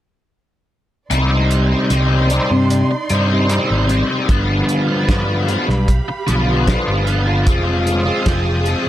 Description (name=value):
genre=psychedelic rock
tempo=76 BPM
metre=4/4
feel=straight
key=C minor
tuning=A4 = 440 Hz
part: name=dark symphonic string section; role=sustained chords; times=1.1-8.9 s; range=Eb4 to Eb6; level=-26 LUFS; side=right 4 dB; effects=none
part: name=cranked stack guitar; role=riff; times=1.1-8.9 s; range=G2 to F4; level=-17 LUFS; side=left 1 dB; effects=overdrive, rotary speaker
part: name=fingered electric bass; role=bass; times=1.1-8.9 s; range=F1 to G2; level=-18 LUFS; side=equal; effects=none
part: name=cloth-damped thuddy drum kit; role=drums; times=1.1-8.8 s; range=hi-hat, kick drum, snare drum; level=-18 LUFS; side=equal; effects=none
room=light reverb, studio reverb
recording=none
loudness=-14 LUFS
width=side -13 dB against mid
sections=1.1-8.9 A section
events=none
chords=1.1 Cmadd9; 4.3 G7; 7.5 Fm7